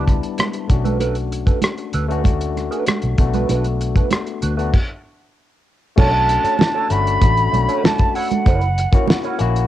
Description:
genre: lush 1970s-style soul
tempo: 96 BPM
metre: 4/4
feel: straight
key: B minor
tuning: A4 = 440 Hz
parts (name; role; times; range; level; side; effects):
- jazz flute; melody; 0.0-0.2, 6.0-9.4 s; F#5 to B5; -20 LUFS; right 2 dB; cassette tape, tape echo
- overdriven tine electric piano; accompaniment; 0.0-9.7 s; G3 to F#4; -24 LUFS; left 9 dB; cassette tape
- mellow electric guitar; riff; 0.0-9.6 s; D4 to C#5; -26 LUFS; right 8 dB; wah, cassette tape
- vintage muted fingered electric bass; bass; 0.0-9.7 s; F#1 to D2; -20 LUFS; equal; transformer saturation
- cloth-damped thuddy drum kit; drums; 0.1-9.7 s; crash cymbal, hi-hat, kick drum, rim click, snare drum; -17 LUFS; equal; cassette tape
- congas; percussion; 0.4-9.2 s; none; -24 LUFS; right 8 dB; none
room: light reverb, small room ambience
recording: home recording on cassette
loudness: -15 LUFS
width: side -13 dB against mid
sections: 0.0-6.0 A section; 6.0-9.7 B section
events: stop 4.7-6.0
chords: 0.0 A9sus4; 0.7 Bm7; 6.0 Bm9; 8.5 F#7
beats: 0.38 | 1.01 1.63 2.25 2.87 | 3.49 4.12 4.74 5.36 | 5.98 6.60 7.22 7.84 | 8.46 9.08

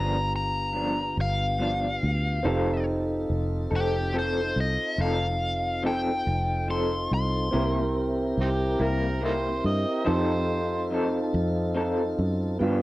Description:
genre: slow blues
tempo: 47 BPM (dotted quarters)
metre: 12/8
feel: straight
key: unclear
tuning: A4 = 440 Hz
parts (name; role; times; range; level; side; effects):
- biting lead guitar; melody; 0.0-8.8 s; G4 to C6; -29 LUFS; left 1 dB; overdrive, cassette tape
- electric guitar through a small old amp; accompaniment; 0.0-12.8 s; G2 to A4; -29 LUFS; left 1 dB; tremolo, cassette tape
- warm grand piano; accompaniment; 0.0-12.8 s; B3 to Bb4; -33 LUFS; right 2 dB; cassette tape
- mellow tonewheel organ; sustained chords; 0.0-12.8 s; D3 to Bb4; -31 LUFS; equal; slow rotary speaker, cassette tape
- fingered electric bass; bass; 0.0-12.8 s; F1 to G2; -28 LUFS; equal; none
- overdriven harmonica; second line; 8.4-10.9 s; C4 to Eb5; -31 LUFS; right 2 dB; cassette tape
room: moderate spring reverb, RT60 1.1 s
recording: home recording on cassette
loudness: -24 LUFS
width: side -17 dB against mid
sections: 0.0-12.8 A section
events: none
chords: 0.0 G7; 2.4 F7; 7.5 C7; 10.1 F7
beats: 1.17 | 2.45 3.72 4.99 6.27 | 7.54 8.81 10.07 11.34 | 12.61

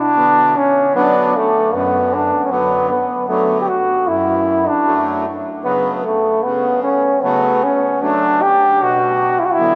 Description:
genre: klezmer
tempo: 76 BPM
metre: 3/4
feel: straight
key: B minor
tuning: A4 = 442 Hz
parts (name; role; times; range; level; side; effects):
- bright trombone; melody; 0.0-9.8 s; A3 to G4; -16 LUFS; equal; none
- accordion; accompaniment; 0.2-9.8 s; F#2 to D4; -24 LUFS; equal; light tremolo tuning
room: wet cathedral reverb, RT60 5.3 s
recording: recorded in a church or concert hall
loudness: -16 LUFS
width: mono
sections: 0.0-9.8 A section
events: none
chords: 0.0 Bm; 4.1 F#m; 8.8 Bm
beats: 0.16 0.95 | 1.73 2.51 3.30 | 4.08 4.87 5.65 | 6.44 7.23 8.01 | 8.80 9.59

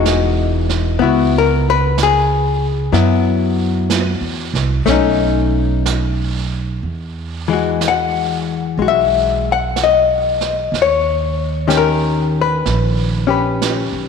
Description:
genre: jazz ballad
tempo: 62 BPM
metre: 4/4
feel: swing 66% on 8ths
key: E major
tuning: A4 = 439 Hz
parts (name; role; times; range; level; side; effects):
- archtop guitar, miked and amplified; accompaniment; 0.0-14.1 s; D#3 to F#5; -16 LUFS; left 8 dB; none
- upright bass; bass; 0.0-14.1 s; E1 to F#2; -19 LUFS; right 3 dB; none
- jazz brush drum kit; drums; 0.1-14.1 s; brushed snare drum, hi-hat, snare drum; -25 LUFS; right 10 dB; none
room: moderate echo chamber reverb, RT60 2.5 s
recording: 1960s-style stereo with parts hard left and right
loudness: -14 LUFS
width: side -6 dB against mid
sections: 0.0-6.8 A section; 6.8-14.1 B section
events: none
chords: 0.0 Emaj9; 1.0 C#m7; 2.9 F#7sus4; 4.9 B9; 6.8 Emaj9; 10.7 D#7b13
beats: 0.05 1.01 1.98 | 2.93 3.89 4.86 5.85 | 6.84 7.81 8.78 9.75 | 10.71 11.68 12.64 13.60

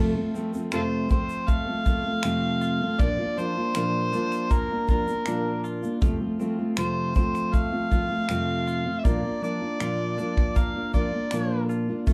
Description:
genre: acoustic pop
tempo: 79 BPM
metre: 4/4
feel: straight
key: unclear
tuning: A4 = 439 Hz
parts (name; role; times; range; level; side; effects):
- fingerpicked steel-string acoustic guitar; accompaniment; 0.0-12.1 s; F2 to A4; -29 LUFS; equal; none
- direct-recorded clean electric guitar; arpeggios; 0.0-12.1 s; F3 to F4; -43 LUFS; equal; tape echo
- soft brush drum kit; drums; 0.4-12.1 s; finger snaps, kick drum, shaker; -26 LUFS; equal; none
- overdriven harmonica; melody; 0.7-11.7 s; F4 to F5; -31 LUFS; equal; plate reverb
room: wet small room reverb, RT60 0.5 s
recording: heard from further back in the room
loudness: -26 LUFS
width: mono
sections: 0.0-12.1 A section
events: none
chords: 0.0 F; 3.0 Bb; 6.0 F; 9.0 Bb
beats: 0.73 1.49 2.24 | 3.00 3.75 4.51 5.27 | 6.02 6.78 7.54 8.29 | 9.05 9.80 10.56 11.31 | 12.07

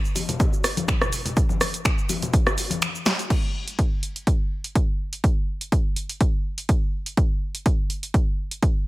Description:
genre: house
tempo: 124 BPM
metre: 4/4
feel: swing 54% on 16ths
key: none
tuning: none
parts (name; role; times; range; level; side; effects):
- punchy analog drum machine; drums; 0.0-8.7 s; crash cymbal, finger snaps, hi-hat, rim click, shaker, snare drum; -26 LUFS; equal; none
- bongos and congas; percussion; 0.2-3.2 s; none; -30 LUFS; left 4 dB; none
- electronic kick drum; drums; 0.4-8.7 s; none; -21 LUFS; equal; none
room: little or no reverb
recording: none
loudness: -21 LUFS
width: side -19 dB against mid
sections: 0.0-3.3 A section; 3.3-8.9 B section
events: break 2.8-3.3; drum fill 3.1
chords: none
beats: 0.40 0.88 | 1.37 1.85 2.33 2.82 | 3.30 3.79 4.27 4.75 | 5.24 5.72 6.21 6.69 | 7.17 7.66 8.14 8.62

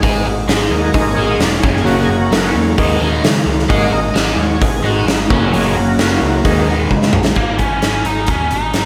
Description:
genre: classic rock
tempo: 131 BPM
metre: 4/4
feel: straight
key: unclear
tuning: A4 = 439 Hz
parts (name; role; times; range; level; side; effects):
- bright tonewheel organ; sustained chords; 0.0-6.8 s; C#3 to F#5; -22 LUFS; equal; slow rotary speaker, overdrive, chorus vibrato
- crunchy overdriven guitar; riff; 0.0-7.3 s; D#3 to G#4; -20 LUFS; equal; phaser
- overdriven picked electric bass; bass; 0.0-8.9 s; E1 to C#3; -23 LUFS; equal; none
- big rock drum kit; drums; 0.0-8.9 s; crash cymbal, hi-hat, kick drum, snare drum, toms; -18 LUFS; equal; none
- biting lead guitar; melody; 7.4-8.9 s; A#3 to D#4; -20 LUFS; equal; overdrive
room: moderate lush hall reverb, RT60 2.1 s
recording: none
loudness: -14 LUFS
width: mono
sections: 0.0-7.4 A section; 7.4-8.9 B section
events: tonewheel organ solo 0.0-7.4; drum fill 6.9-7.4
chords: 0.0 G#sus2; 1.6 F#; 2.8 D#sus4; 3.7 G#sus2; 5.3 F#; 6.5 D#sus4; 7.4 G#5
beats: | 0.04 0.50 0.96 1.41 | 1.87 2.33 2.79 3.24 | 3.70 4.16 4.62 5.08 | 5.53 5.99 6.45 6.91 | 7.37 7.83 8.29 8.75

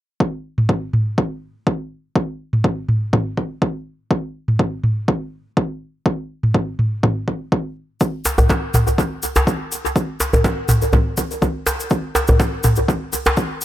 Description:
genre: afro house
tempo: 123 BPM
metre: 4/4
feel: swing 55% on 16ths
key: none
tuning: none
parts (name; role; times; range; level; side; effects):
- electronic kick drum; drums; 0.2-13.5 s; none; -19 LUFS; equal; high-pass filter on kick, high-pass filter on room
- electronic toms; drums; 0.6-12.7 s; none; -19 LUFS; equal; none
- egg shaker; percussion; 8.0-13.6 s; none; -26 LUFS; left 2 dB; analog delay
- djembe; percussion; 8.3-13.4 s; none; -18 LUFS; equal; analog delay
room: light reverb, small room ambience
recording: echo-heavy mix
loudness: -17 LUFS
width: side -13 dB against mid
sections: 0.2-13.6 A section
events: none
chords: none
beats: | 0.20 0.69 1.18 1.67 | 2.15 2.64 3.13 3.62 | 4.11 4.59 5.08 5.57 | 6.06 6.54 7.03 7.52 | 8.01 8.50 8.98 9.47 | 9.96 10.45 10.94 11.42 | 11.91 12.40 12.89 13.37

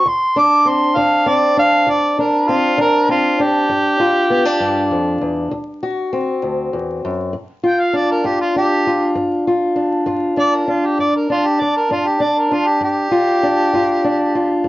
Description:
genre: acoustic country blues, solo or duo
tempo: 66 BPM (dotted quarters)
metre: 12/8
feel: straight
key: unclear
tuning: A4 = 440 Hz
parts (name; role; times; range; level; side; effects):
- mellow harmonica; melody; 0.0-14.6 s; F4 to D6; -17 LUFS; right 1 dB; none
- fingerpicked old ladder-braced acoustic guitar; accompaniment; 0.0-14.7 s; D2 to F#4; -16 LUFS; left 1 dB; none
room: moderate studio reverb, RT60 0.6 s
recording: worn, warbling old tape, cassette tape, vinyl crackle, warbly pitch drift, nothing above 7.5 kHz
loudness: -14 LUFS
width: side -17 dB against mid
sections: 0.0-7.3 A section; 7.3-14.7 B section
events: harmonica solo 0.0-7.3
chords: 0.0 D7(no3); 3.7 G7(no3); 5.5 D7; 7.3 G7(no3)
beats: | 0.06 0.97 1.88 2.79 | 3.70 4.61 5.51 6.42 | 7.33 8.25 9.16 10.07 | 10.98 11.89 12.81 13.72 | 14.63

